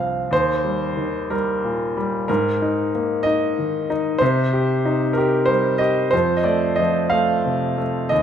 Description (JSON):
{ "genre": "classical, lyrical solo piano", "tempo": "61 BPM (dotted quarters)", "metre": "6/8", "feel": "rubato", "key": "Eb major", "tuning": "A4 = 440 Hz", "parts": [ { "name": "clear grand piano", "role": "solo", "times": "0.0-8.2 s", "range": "C2 to F5", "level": "-18 LUFS", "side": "equal", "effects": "none" } ], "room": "moderate concert hall reverb, RT60 2.1 s", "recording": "minimal, uncompressed stereo recording", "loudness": "-18 LUFS", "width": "side -8 dB against mid", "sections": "0.3-8.2 A section", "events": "grand piano fill 0.0-0.3", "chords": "0.3 Eb; 2.3 Absus2; 4.2 Cm; 6.1 F" }